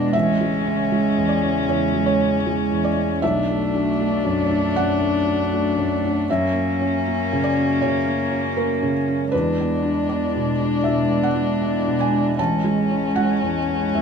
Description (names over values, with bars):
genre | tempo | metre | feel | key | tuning
neoclassical piano and strings | 78 BPM | 4/4 | rubato | B dorian | A4 = 440 Hz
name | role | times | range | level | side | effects
dark violin | melody | 0.0-14.0 s | C#4 to D4 | -23 LUFS | left 9 dB | none
rich cello | second line | 0.0-14.0 s | G#3 to A#3 | -26 LUFS | right 6 dB | none
felt-muted upright piano | accompaniment | 0.0-14.0 s | A1 to A5 | -21 LUFS | right 3 dB | none
hollow soft pad | sustained chords | 0.0-14.0 s | C#3 to E5 | -32 LUFS | equal | none
room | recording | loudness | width
light reverb | minimal, uncompressed stereo recording | -18 LUFS | side -6 dB against mid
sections
0.0-14.0 A section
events
none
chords
0.1 Amaj7; 3.2 Bm7; 6.3 F#7; 9.3 E7; 12.4 Amaj7